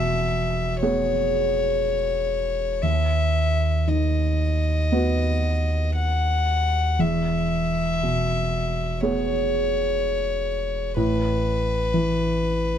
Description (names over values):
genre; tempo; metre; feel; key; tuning
neoclassical piano and strings; 57-62 BPM; 4/4; rubato; E major; A4 = 440 Hz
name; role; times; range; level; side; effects
rich violin; melody; 0.0-12.8 s; B4 to F#5; -25 LUFS; left 4 dB; none
warm concert grand piano; accompaniment; 0.0-12.8 s; D#2 to C#5; -25 LUFS; right 2 dB; none
punchy sub bass; bass; 0.0-12.8 s; E1 to D#2; -25 LUFS; equal; none
room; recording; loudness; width
light reverb; dark, warm production; -20 LUFS; side -9 dB against mid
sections
0.0-12.8 A section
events
none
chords
0.0 E6; 2.8 B/D#; 7.0 E6; 11.0 A5